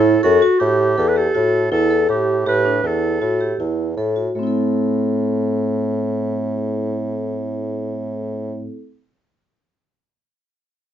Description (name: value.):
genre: contemporary instrumental, chamber music in an uneven meter.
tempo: 158 BPM.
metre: 5/4.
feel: straight.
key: A dorian.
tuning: A4 = 435 Hz.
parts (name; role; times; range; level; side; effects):
clear clarinet; melody; 0.0-3.6 s; F#4 to B4; -20 LUFS; equal; none.
vibraphone with medium mallets; arpeggios; 0.0-8.8 s; A3 to A4; -20 LUFS; equal; none.
warm bassoon; bass; 0.0-8.7 s; E2 to A2; -22 LUFS; right 1 dB; none.
room: light reverb.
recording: dark, warm production, nothing above 7.6 kHz.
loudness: -17 LUFS.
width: side -10 dB against mid.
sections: 0.6-4.4 A section; 4.4-8.2 B section.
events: none.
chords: 0.0 Dadd9/A (rootless); 0.6 A5; 4.4 Am.